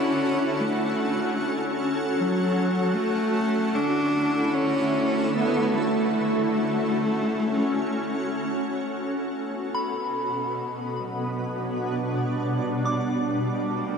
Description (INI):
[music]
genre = ambient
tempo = free time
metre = none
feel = none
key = B minor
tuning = A4 = 440 Hz
[part]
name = bright cello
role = melody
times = 0.0-14.0 s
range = F#3 to D4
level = -27 LUFS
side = left 1 dB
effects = diffuse ambient delay
[part]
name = shimmering ambient pad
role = sustained chords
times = 0.0-14.0 s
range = B2 to C#5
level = -25 LUFS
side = right 1 dB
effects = chorus, built-in reverb
[part]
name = drifting glass-harmonics texture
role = texture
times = 0.0-9.4 s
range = F#5 to F#6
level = -41 LUFS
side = left 2 dB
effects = none
[part]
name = soft synth bell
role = arpeggios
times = 9.7-14.0 s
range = B5 to D6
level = -32 LUFS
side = left 1 dB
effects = chorus, phaser, diffuse ambient delay
[sound]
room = wet huge ambient reverb, RT60 6.9 s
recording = dark, warm production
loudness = -23 LUFS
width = side -6 dB against mid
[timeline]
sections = 0.0-9.4 A section; 9.4-14.0 B section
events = fade-in on cello 9.4-14.0; filter sweep on ambient pad 9.4-14.0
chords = 0.0 F#m; 3.0 Dadd9; 6.2 F#m; 9.4 Bmadd9; 12.6 Gm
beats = free time